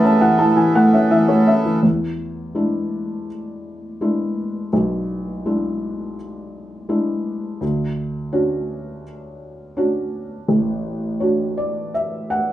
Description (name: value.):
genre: folk.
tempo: 83 BPM.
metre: 4/4.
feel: straight.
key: unclear.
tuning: A4 = 441 Hz.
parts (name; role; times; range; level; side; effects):
felt-muted upright piano; melody; 0.0-12.5 s; A1 to A5; -18 LUFS; equal; none.
hand-pumped harmonium; sustained chords; 0.0-1.8 s; C#3 to A4; -23 LUFS; right 2 dB; none.
vibraphone with medium mallets; arpeggios; 0.0-1.6 s; E4 to E5; -23 LUFS; right 2 dB; none.
room: wet studio reverb, RT60 0.6 s.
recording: heard from further back in the room, nothing above 10.8 kHz.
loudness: -17 LUFS.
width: side -13 dB against mid.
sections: 0.0-1.8 A section; 1.8-12.5 B section.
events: felt piano fill 0.0-1.8, 11.2-12.5.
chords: 0.0 Aadd9; 1.8 E7; 7.6 Dmaj7.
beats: 0.39 1.11 | 1.84 2.56 3.28 4.01 | 4.73 5.45 6.17 6.90 | 7.62 8.34 9.06 9.78 | 10.50 11.22 11.94.